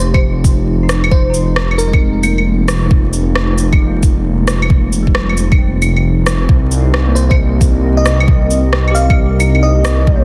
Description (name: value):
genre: future garage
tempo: 134 BPM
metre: 4/4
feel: swing 66% on 16ths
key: F minor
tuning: A4 = 436 Hz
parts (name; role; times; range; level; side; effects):
- bell-like FM electric piano; melody; 0.0-2.4, 7.2-10.2 s; Bb4 to F5; -23 LUFS; equal; chorus, phaser, tape echo
- bell-like tine electric piano; accompaniment; 0.0-10.2 s; F3 to G4; -24 LUFS; equal; phaser, sidechain pumping, tape echo
- dark analog pad; sustained chords; 0.2-10.2 s; C4 to Eb5; -26 LUFS; equal; chorus, phaser, sidechain pumping
- dark detuned saw bass; bass; 0.0-10.2 s; F1 to C2; -16 LUFS; equal; tube saturation, sidechain pumping
- electronic shaker, claves and rim click; drums; 0.0-10.0 s; none; -22 LUFS; equal; soft clipping on snare
- electronic kick drum; drums; 0.1-10.2 s; none; -14 LUFS; equal; none
room: digital ambience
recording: dense, heavily limited modern master, vinyl crackle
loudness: -13 LUFS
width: mono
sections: 0.0-10.2 A section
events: none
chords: 0.0 Fm7; 6.5 Cm7